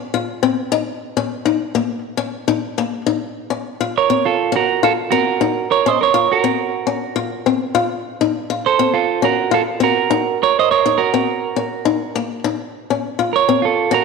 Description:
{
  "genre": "highlife",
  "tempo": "102 BPM",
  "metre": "4/4",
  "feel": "swing 54% on 16ths",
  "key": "Bb harmonic minor",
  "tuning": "A4 = 441 Hz",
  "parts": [
    { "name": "picked swing-style acoustic guitar", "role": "accompaniment", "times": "0.0-14.0 s", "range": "Bb3 to F4", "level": "-19 LUFS", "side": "left 8 dB", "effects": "none" },
    { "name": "clean electric guitar", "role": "melody", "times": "4.0-14.0 s", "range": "F4 to Eb5", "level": "-16 LUFS", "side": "right 9 dB", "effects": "spring reverb" }
  ],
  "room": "wet echo chamber reverb, RT60 1.9 s, small room reverb",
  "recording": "1960s-style stereo with parts hard left and right",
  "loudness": "-16 LUFS",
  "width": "side -4 dB against mid",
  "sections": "0.0-3.1 A section; 3.1-14.0 B section",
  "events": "none",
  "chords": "0.0 Csus4; 0.7 Eb5; 3.1 Bbm; 10.1 Ebm; 12.5 Bbm"
}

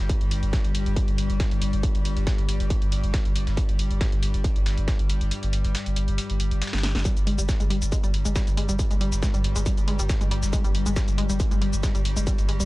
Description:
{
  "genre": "driving peak-time techno",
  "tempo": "138 BPM",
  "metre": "4/4",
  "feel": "straight",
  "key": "unclear",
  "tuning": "A4 = 439 Hz",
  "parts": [
    { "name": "saturated sub bass", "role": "bass", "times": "0.0-12.7 s", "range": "G1", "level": "-25 LUFS", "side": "equal", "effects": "overdrive, sidechain pumping, low-pass filter" },
    { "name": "metallic inharmonic drone", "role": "drone", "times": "0.0-12.7 s", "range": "G2 to G3", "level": "-32 LUFS", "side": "left 3 dB", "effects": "chorus, built-in reverb, sidechain pumping" },
    { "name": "dusty soul sampler-style drum kit", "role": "drums", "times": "0.1-12.7 s", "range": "hi-hat, snare drum", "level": "-38 LUFS", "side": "equal", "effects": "high-pass filter on hats, high-pass filter on snare" },
    { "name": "electronic kick drum", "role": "drums", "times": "0.1-12.4 s", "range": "none", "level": "-25 LUFS", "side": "equal", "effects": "distortion" },
    { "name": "techno drum kit", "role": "drums", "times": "0.1-12.7 s", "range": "hi-hat, shaker, snare drum", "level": "-34 LUFS", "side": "equal", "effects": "none" },
    { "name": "analog pluck", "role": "riff", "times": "7.1-12.7 s", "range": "G3 to Ab3", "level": "-31 LUFS", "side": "equal", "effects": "chorus, overdrive, sidechain pumping, tape echo" }
  ],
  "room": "little or no reverb",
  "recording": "dry, gritty hardware recording, cassette tape",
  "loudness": "-22 LUFS",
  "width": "side -19 dB against mid",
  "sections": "0.0-12.7 A section",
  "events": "kick drops out 5.3-7.1; drum fill 6.7-7.1",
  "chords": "0.0 G5"
}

